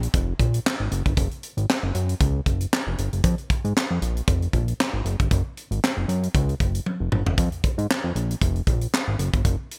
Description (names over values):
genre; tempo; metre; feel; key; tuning
early-eighties boogie funk; 116 BPM; 4/4; swing 56% on 16ths; unclear; A4 = 440 Hz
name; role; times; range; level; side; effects
fat analog bass; bass; 0.0-9.6 s; F1 to Ab2; -26 LUFS; equal; none
tight funk drum kit; drums; 0.0-9.8 s; handclaps, hi-hat, kick drum, snare drum, toms; -26 LUFS; equal; none
room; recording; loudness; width
light reverb; bright 1980s-style digital production; -24 LUFS; mono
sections
0.0-9.8 A section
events
drum fill 6.9-7.4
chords
none